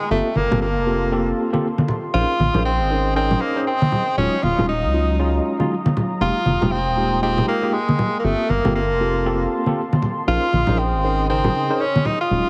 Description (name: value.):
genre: deep house.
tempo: 118 BPM.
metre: 4/4.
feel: swing 60% on 16ths.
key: unclear.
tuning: A4 = 440 Hz.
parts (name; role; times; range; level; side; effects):
edgy tenor saxophone; melody; 0.0-12.5 s; Ab3 to F4; -24 LUFS; equal; vintage 12-bit sampler grit, tape echo.
warbly tape-like pad; sustained chords; 0.0-12.5 s; Gb3 to Eb6; -32 LUFS; equal; chorus, built-in reverb.
tine electric piano; stabs; 0.1-12.5 s; Db3 to C5; -26 LUFS; equal; tape echo.
rubbery square bass; bass; 0.1-12.4 s; Eb1 to Db2; -25 LUFS; equal; none.
congas; percussion; 0.4-12.2 s; none; -24 LUFS; equal; none.
room: moderate lush hall reverb, RT60 2.5 s.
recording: heavily compressed radio sound, multiband compression, cassette tape.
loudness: -20 LUFS.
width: mono.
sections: 0.0-12.5 A section.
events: none.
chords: 0.1 Gm11; 1.9 Bbm11; 4.2 Ebm11; 6.2 Fm11; 8.2 Gm11; 10.0 Bbm11.